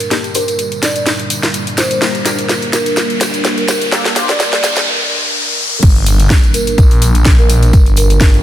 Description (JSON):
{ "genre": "bass house", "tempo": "126 BPM", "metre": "4/4", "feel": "swing 55% on 16ths", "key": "G minor", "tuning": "A4 = 443 Hz", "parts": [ { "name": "dark analog pad", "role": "sustained chords", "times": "0.0-8.4 s", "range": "G3 to Bb4", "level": "-22 LUFS", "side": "right 1 dB", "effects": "chorus, phaser, vintage 12-bit sampler grit, sidechain pumping" }, { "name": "house drum kit", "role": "drums", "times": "0.0-8.4 s", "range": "crash cymbal, hi-hat, snare drum", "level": "-16 LUFS", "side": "equal", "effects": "overdrive" }, { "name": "tambourine", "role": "percussion", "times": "0.0-8.4 s", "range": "none", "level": "-25 LUFS", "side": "right 2 dB", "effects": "none" }, { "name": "riser, noise sweep and impact", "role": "sound effects", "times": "1.2-7.7 s", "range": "none", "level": "-20 LUFS", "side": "equal", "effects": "none" }, { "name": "band-passed chord stab", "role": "stabs", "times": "0.1-4.3 s", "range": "Bb3 to C5", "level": "-23 LUFS", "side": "left 4 dB", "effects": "phaser, analog chorus, cassette tape, sidechain pumping, digital delay" }, { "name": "marimba with soft mallets", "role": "melody", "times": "0.4-8.2 s", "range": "Bb4 to D5", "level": "-20 LUFS", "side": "right 1 dB", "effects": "digital delay" }, { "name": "phased detuned saw bass", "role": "bass", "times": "5.8-8.4 s", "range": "G1 to Bb1", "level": "-11 LUFS", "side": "equal", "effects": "phaser, tube saturation, sidechain pumping" }, { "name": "electronic kick drum", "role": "drums", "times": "5.8-8.3 s", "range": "none", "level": "-8 LUFS", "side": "equal", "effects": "overdrive" } ], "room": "light reverb", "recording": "dense, heavily limited modern master, high-pass filter", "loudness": "-10 LUFS", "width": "side -12 dB against mid", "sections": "0.0-5.8 A section; 5.8-8.4 B section", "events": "build-up 0.0-5.8; drum fill 0.0-4.9; filter sweep on synth stab 0.0-5.8; filter sweep 0.0-5.8; riser 1.2-5.8; noise sweep 3.9-5.8; break 4.9-5.8; drop 5.8-8.4; impact 5.8-7.7", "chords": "0.0 Gm" }